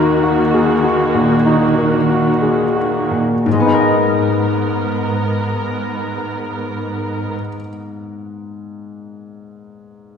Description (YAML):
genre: cinematic, emotional film score for orchestra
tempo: 56-67 BPM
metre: 4/4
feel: rubato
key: G# minor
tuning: A4 = 439 Hz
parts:
  - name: clear baby grand piano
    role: accompaniment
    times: 0.0-10.2 s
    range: D#2 to D#5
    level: -18 LUFS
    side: left 1 dB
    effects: none
  - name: warm studio viola section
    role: accompaniment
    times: 0.0-7.3 s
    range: A#3 to A#4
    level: -20 LUFS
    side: equal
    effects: none
  - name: concert harp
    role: arpeggios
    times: 0.0-7.7 s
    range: G#2 to D#5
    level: -20 LUFS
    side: left 6 dB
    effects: none
  - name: warm symphonic cello section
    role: bass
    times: 0.0-7.3 s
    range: G#2 to D#3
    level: -22 LUFS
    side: right 3 dB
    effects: none
room: wet scoring stage reverb, RT60 1.9 s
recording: heard from further back in the room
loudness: -14 LUFS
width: side -7 dB against mid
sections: 0.0-3.5 A section; 3.5-7.5 B section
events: slowing down 0.0-3.5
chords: 0.0 D#m; 3.5 G#madd9